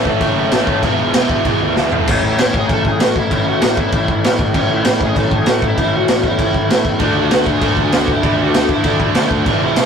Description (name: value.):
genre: punk rock.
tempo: 195 BPM.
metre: 4/4.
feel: straight.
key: A major.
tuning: A4 = 440 Hz.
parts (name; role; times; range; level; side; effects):
distorted electric guitar; riff; 0.0-2.1, 7.0-9.9 s; E2 to D4; -21 LUFS; right 6 dB; overdrive.
raw garage guitar; riff; 0.0-9.9 s; A2 to F#4; -18 LUFS; left 2 dB; overdrive.
fuzz picked electric bass; bass; 0.0-9.9 s; E1 to D3; -24 LUFS; equal; overdrive.
raw garage drum kit; drums; 0.1-9.8 s; crash cymbal, kick drum, snare drum, toms; -16 LUFS; equal; none.
lead guitar through a small cranked amp; melody; 2.1-9.9 s; C#4 to A5; -21 LUFS; left 1 dB; overdrive.
room: light reverb.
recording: rough rehearsal-room recording, warm saturation.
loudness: -13 LUFS.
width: side -7 dB against mid.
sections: 0.0-2.1 A section; 2.1-9.9 B section.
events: drum fill 1.8-2.1.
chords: 0.0 A; 0.8 E; 2.1 A; 7.0 D.